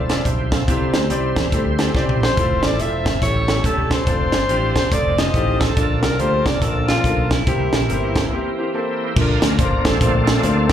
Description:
uptempo gospel; 142 BPM; 4/4; swing 61% on 8ths; A4 = 440 Hz
bright tonewheel organ; sustained chords; 0.0-10.7 s; Eb3 to C5; -25 LUFS; right 2 dB; slow rotary speaker, overdrive, chorus vibrato
modern bright fingered electric bass; bass; 0.0-10.7 s; E1 to E2; -22 LUFS; equal
clear baby grand piano; accompaniment; 0.1-10.7 s; A2 to A5; -25 LUFS; left 3 dB; slapback echo
crisp fusion drum kit; drums; 0.1-10.7 s; crash cymbal, hi-hat, kick drum, snare drum, toms; -20 LUFS; equal
bright alto saxophone; melody; 2.2-8.7 s; E4 to E5; -22 LUFS; equal; slapback echo
light reverb; live gig heard through the venue's PA, club reverb; -16 LUFS; side -10 dB against mid
0.0-9.2 A section; 9.2-10.7 B section
drum fill 2.0-2.4; break 8.3-9.2; tonewheel organ solo 9.2-10.7
0.0 Fmaj7; 0.7 C; 2.4 Fmaj7; 3.2 A7; 4.1 Dm7/F; 4.9 F7; 5.8 Bbmaj7; 7.5 C7; 9.2 Bbmaj7

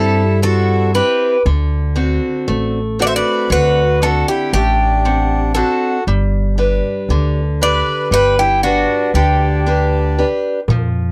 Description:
greek folk, Greek bouzouki band; 117 BPM (eighths); 9/8; straight; G major; A4 = 438 Hz
Greek bouzouki; melody; 0.0-10.3 s; F#4 to E5; -18 LUFS; equal
accordion; second line; 0.0-10.3 s; D4 to C5; -24 LUFS; equal
picked acoustic archtop guitar; accompaniment; 0.0-11.1 s; D3 to F#5; -22 LUFS; equal
upright bass; bass; 0.0-11.1 s; G1 to G2; -19 LUFS; equal
darbuka; percussion; 10.7-10.9 s; -19 LUFS; equal
light reverb; dry, close 1970s-style studio recording; -15 LUFS; mono
0.0-10.7 A section
0.0 C; 1.5 D7; 6.1 G

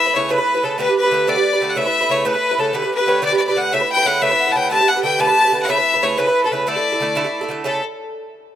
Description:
celtic folk, Celtic jig; 122 BPM (dotted quarters); 6/8; straight; A mixolydian; A4 = 440 Hz
clear fiddle; melody; 0.0-7.8 s; A4 to A5; -17 LUFS; left 2 dB
clear fiddle; second line; 0.0-7.8 s; A4 to A5; -25 LUFS; left 4 dB
Irish bouzouki; accompaniment; 0.0-7.8 s; C#3 to B4; -19 LUFS; right 4 dB
moderate plate reverb, RT60 2.6 s; rough home demo mix; -15 LUFS; side -11 dB against mid
0.0-7.7 A section
0.0 Aadd9; 0.8 Gadd9; 1.8 Aadd9; 2.7 Gadd9; 3.7 Aadd9; 4.7 Gadd9; 5.7 Aadd9; 6.7 Asus4; 7.7 A

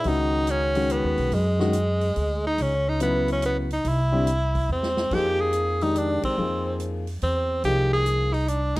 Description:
modal jazz; 142 BPM; 3/4; swing 66% on 8ths; F dorian from 5.1 s; A4 = 440 Hz
edgy tenor saxophone; melody; 0.0-8.8 s; G#3 to Ab4; -24 LUFS; equal; slapback echo
warm grand piano; accompaniment; 0.0-8.3 s; C#3 to Ab4; -27 LUFS; left 3 dB
upright bass; bass; 0.0-8.8 s; B1 to F#2; -26 LUFS; equal
swinging big-band drum kit; drums; 0.0-8.8 s; crash cymbal, hi-hat, kick drum, ride cymbal, snare drum; -36 LUFS; right 1 dB
light reverb; dry, close 1970s-style studio recording; -21 LUFS; side -19 dB against mid
0.0-5.1 A section; 5.1-8.8 B section
drum fill 4.7-5.1; band accent 6.2
0.1 B6; 3.8 C; 5.1 Fm9

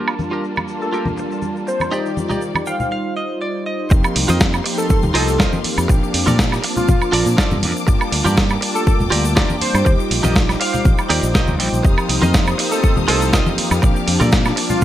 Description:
nu-disco, nu disco; 121 BPM; 4/4; straight; F mixolydian; A4 = 442 Hz
mellow synth brass; accompaniment; 0.0-14.8 s; F3 to A5; -23 LUFS; equal; chorus, sidechain pumping
rich studio string section; sustained chords; 0.0-14.8 s; Eb3 to Eb6; -28 LUFS; left 2 dB; sidechain pumping
direct-recorded clean electric guitar; riff; 0.0-14.7 s; Eb4 to G5; -24 LUFS; right 2 dB; analog chorus
dusty soul sampler-style drum kit; drums; 0.1-14.7 s; hi-hat, snare drum, woodblock; -20 LUFS; right 2 dB; gated reverb
tube shaker and congas; percussion; 0.1-14.8 s; -25 LUFS; left 2 dB
wide unison lead; melody; 0.8-14.8 s; F4 to F5; -24 LUFS; equal; digital delay
modern bright fingered electric bass; bass; 3.9-14.8 s; F1 to Bb2; -20 LUFS; equal; tube saturation
electronic kick drum; drums; 3.9-14.8 s; -16 LUFS; equal
light reverb; bright 1980s-style digital production, low-pass filter; -15 LUFS; side -12 dB against mid
0.0-3.9 A section; 3.9-14.8 B section
filter sweep on clean electric guitar 0.0-3.9; clean electric guitar fill 2.4-3.9, 10.9-11.8; break 2.9-3.9; drop 3.9-14.8
0.0 Gm7; 1.9 Ebmaj7; 3.9 F7sus4; 5.9 Bbmaj7; 7.9 Gm7; 9.9 Ebmaj7; 11.8 F7sus4; 13.8 Bbmaj7

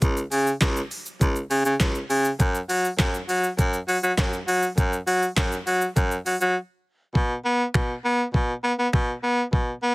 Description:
dance-pop; 101 BPM; 4/4; straight; A4 = 435 Hz
clear baritone saxophone; bass; 0.0-9.9 s; C#2 to B3; -23 LUFS; equal; sidechain pumping
smooth R&B drum kit; drums; 0.0-9.7 s; finger snaps, handclaps, hi-hat, kick drum, shaker, snare drum; -24 LUFS; equal
little or no reverb; heavily compressed radio sound, multiband compression; -21 LUFS; side -27 dB against mid
0.0-7.2 A section; 7.2-9.9 B section
break 6.6-7.2

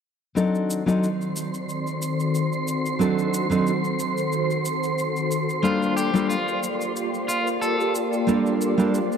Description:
sunset chillout; 91 BPM; 4/4; swing 54% on 16ths; A4 = 440 Hz
nylon-string guitar; accompaniment; 0.3-9.0 s; F#3 to A4; -23 LUFS; moving between left 5 dB and right 4 dB; auto-pan, low-pass filter, tape echo
soft string machine; sustained chords; 1.0-9.2 s; Eb3 to D5; -26 LUFS; equal; phaser, ensemble chorus
shaker; drums; 0.4-9.2 s; -35 LUFS; left 1 dB
wind-like tuned noise texture; texture; 1.0-9.2 s; C5 to C6; -30 LUFS; right 1 dB; built-in reverb
electric guitar at the edge of break-up; arpeggios; 5.6-7.9 s; F4 to A4; -28 LUFS; left 1 dB; tape echo
wet lush hall reverb, RT60 2.8 s; dark, warm production; -21 LUFS; side -7 dB against mid
0.4-9.2 A section
filter sweep on string machine 0.4-9.2
0.4 D7b9; 5.6 Gm9

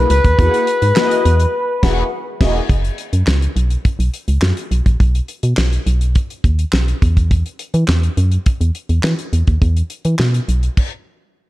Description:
early-eighties boogie funk; 104 BPM; 4/4; straight; A4 = 437 Hz
expressive portamento lead; melody; 0.0-2.1 s; B4; -17 LUFS; left 1 dB; chorus, diffuse ambient delay
mellow synth brass; accompaniment; 0.0-2.6 s; A#3 to F#5; -23 LUFS; left 2 dB; chorus, phaser
organ-like FM bass; bass; 0.0-10.7 s; E1 to E3; -14 LUFS; equal
damped 70s drum kit; drums; 0.1-10.9 s; crash cymbal, handclaps, hi-hat, kick drum, snare drum; -18 LUFS; equal
light reverb, studio ambience; -14 LUFS; side -17 dB against mid
0.0-2.7 A section; 2.7-11.5 B section
band accent 1.5-2.7; stop 10.8-11.5
0.0 Emaj9#11; 2.7 F#sus4; 5.0 N.C.

